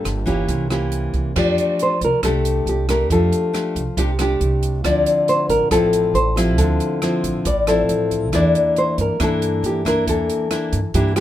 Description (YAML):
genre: bossa nova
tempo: 138 BPM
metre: 4/4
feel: straight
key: F major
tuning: A4 = 440 Hz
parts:
  - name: nylon-string guitar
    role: melody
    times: 0.0-11.2 s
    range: G4 to D5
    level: -20 LUFS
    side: left 1 dB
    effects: none
  - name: nylon-string guitar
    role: accompaniment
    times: 0.0-11.2 s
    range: A2 to A4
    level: -22 LUFS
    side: left 1 dB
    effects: none
  - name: upright bass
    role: bass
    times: 0.0-11.2 s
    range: G1 to G2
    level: -22 LUFS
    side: right 1 dB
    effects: none
  - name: compact cocktail drum kit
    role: drums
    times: 0.1-11.2 s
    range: crash cymbal, hi-hat, kick drum, rim click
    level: -27 LUFS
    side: right 2 dB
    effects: none
room: light reverb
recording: minimal, uncompressed stereo recording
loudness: -16 LUFS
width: side -12 dB against mid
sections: 0.0-1.4 A section; 1.4-11.2 B section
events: none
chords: 0.5 C7b9; 1.4 F69; 4.8 Dm9; 8.3 Em7b5